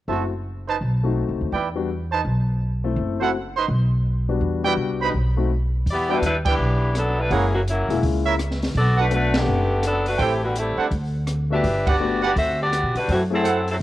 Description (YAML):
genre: jazz, big band swing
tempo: 166 BPM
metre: 4/4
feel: swing 63% on 8ths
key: E minor from 5.9 s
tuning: A4 = 441 Hz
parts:
  - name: warm concert grand piano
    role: accompaniment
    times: 0.1-13.4 s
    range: G3 to F#5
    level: -26 LUFS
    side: left 6 dB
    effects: none
  - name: warm trumpet section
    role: stabs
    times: 0.1-13.6 s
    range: D4 to C6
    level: -25 LUFS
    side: right 6 dB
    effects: none
  - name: upright bass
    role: bass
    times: 0.1-13.8 s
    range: E1 to C#3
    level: -23 LUFS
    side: equal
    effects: none
  - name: warm saxophone section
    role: melody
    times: 5.9-13.8 s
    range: D3 to E5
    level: -22 LUFS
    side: left 1 dB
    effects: cassette tape
  - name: open jazz drum kit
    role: drums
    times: 5.9-13.7 s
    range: hi-hat, kick drum, ride cymbal, rim click, snare drum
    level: -28 LUFS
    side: equal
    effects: cassette tape
room: light reverb, studio ambience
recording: home recording on cassette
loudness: -19 LUFS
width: side -15 dB against mid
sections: 0.1-5.9 A section; 5.9-13.8 B section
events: band accent 6.4, 9.3, 11.8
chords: 0.1 F#m7b5; 0.8 B7b9; 1.5 Em7; 2.3 Amadd9/B; 3.0 F#m7b5; 3.7 B5; 4.4 Em7; 5.1 B7b9; 5.9 Em7; 7.3 F#7; 8.7 Bm7; 10.2 Am7; 10.9 D; 11.6 Gmaj7; 13.1 F#m7b5